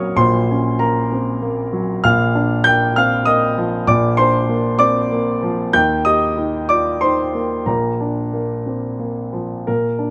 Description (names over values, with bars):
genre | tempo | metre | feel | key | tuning
neoclassical minimalist piano | 59-66 BPM (dotted quarters) | 6/8 | rubato | Bb major | A4 = 440 Hz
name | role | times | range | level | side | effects
warm concert grand piano | solo | 0.0-10.1 s | Bb1 to G6 | -18 LUFS | equal | none
room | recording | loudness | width
little or no reverb | recorded outdoors, with no room sound | -18 LUFS | mono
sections
0.0-9.7 A section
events
none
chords
0.0 Gb/Bb; 2.0 Gm7/Bb; 5.7 Eb; 7.7 Bb